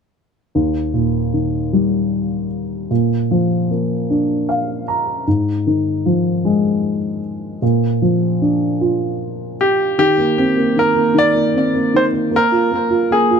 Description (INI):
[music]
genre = pop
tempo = 51 BPM (dotted quarters)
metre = 6/8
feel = straight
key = Eb major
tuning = A4 = 440 Hz
[part]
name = dark upright piano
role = accompaniment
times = 0.6-13.4 s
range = Eb2 to Bb5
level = -16 LUFS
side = equal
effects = none
[part]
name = bright grand piano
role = melody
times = 9.6-13.4 s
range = G4 to D5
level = -15 LUFS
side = equal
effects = digital delay
[sound]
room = light reverb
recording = none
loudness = -15 LUFS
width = side -6 dB against mid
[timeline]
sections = 0.5-10.0 A section; 10.0-13.4 B section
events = upright piano fill 4.1-5.3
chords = 0.5 Eb; 2.9 Bb; 5.3 Fm7/Ab; 7.6 Bb; 10.0 Eb6; 12.3 Bb5